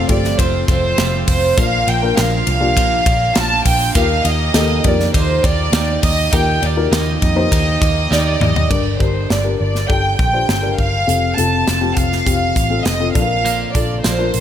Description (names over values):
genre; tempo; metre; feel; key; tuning
piano-driven pop; 101 BPM; 4/4; straight; Bb major; A4 = 440 Hz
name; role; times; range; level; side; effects
warm studio violin section; melody; 0.0-14.4 s; C5 to A5; -18 LUFS; right 2 dB; none
felt-muted upright piano; accompaniment; 0.0-14.4 s; G2 to C5; -22 LUFS; left 6 dB; none
twelve-string electric guitar; riff; 0.0-8.7, 13.4-14.4 s; F2 to G4; -24 LUFS; right 6 dB; none
vintage muted picked electric bass; bass; 0.0-14.4 s; F1 to F2; -19 LUFS; equal; none
modern studio drum kit; drums; 0.1-14.4 s; crash cymbal, hi-hat, kick drum, ride cymbal, snare drum, toms; -19 LUFS; equal; none
room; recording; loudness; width
light reverb, small room ambience; none; -13 LUFS; side -10 dB against mid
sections
0.0-8.7 A section; 8.7-14.4 B section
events
drum fill 8.1-8.7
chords
0.0 F; 1.6 Bb; 4.0 Eb; 8.7 Gm; 11.1 F; 13.2 Bb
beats
0.39 0.98 | 1.57 2.17 2.76 3.36 | 3.95 4.54 5.14 5.73 | 6.33 6.92 7.51 8.11 | 8.70 9.30 9.89 10.48 | 11.08 11.67 12.27 12.86 | 13.46 14.05